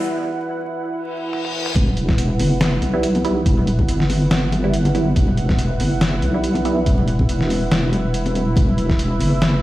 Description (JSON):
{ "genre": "deep dubstep", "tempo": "141 BPM", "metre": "4/4", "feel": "swing 55% on 16ths, half-time", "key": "E minor", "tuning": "A4 = 441 Hz", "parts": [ { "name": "dark analog pad", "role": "sustained chords", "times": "0.0-9.6 s", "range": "E4 to F#5", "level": "-26 LUFS", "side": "right 1 dB", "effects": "chorus" }, { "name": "riser and reverse cymbal", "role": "sound effects", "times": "0.0-1.8 s", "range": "none", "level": "-29 LUFS", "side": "left 4 dB", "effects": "none" }, { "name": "trip hop sampler-style drum kit", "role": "drums", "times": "1.3-9.5 s", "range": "hi-hat, snare drum, toms", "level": "-23 LUFS", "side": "equal", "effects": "high-pass filter on snare, high-pass filter on hats, high-pass filter on toms" }, { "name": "deep soft wobble bass", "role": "bass", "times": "1.8-9.6 s", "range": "E1 to B1", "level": "-19 LUFS", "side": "equal", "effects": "chorus" }, { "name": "electronic kick drum", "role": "drums", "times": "1.8-9.0 s", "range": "none", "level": "-17 LUFS", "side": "equal", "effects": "high-pass filter on kick" }, { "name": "congas", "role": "percussion", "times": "1.8-9.3 s", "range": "none", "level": "-26 LUFS", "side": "left 1 dB", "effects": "dub echo" }, { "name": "filtered dub chord stab", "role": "stabs", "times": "2.9-6.8 s", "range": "G3 to E4", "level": "-25 LUFS", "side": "right 2 dB", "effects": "phaser, dub echo" } ], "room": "light reverb, digital ambience", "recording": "played on a big sound system in a bare room, stone room reverb, vinyl crackle", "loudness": "-16 LUFS", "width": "side -16 dB against mid", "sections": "0.0-1.8 A section; 1.8-9.6 B section", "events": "build-up 0.0-1.8; break 0.1-1.8; reverse cymbal 1.1-1.8; drum fill 1.3-1.8; drop 1.8-9.6", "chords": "0.0 E5; 1.8 Em" }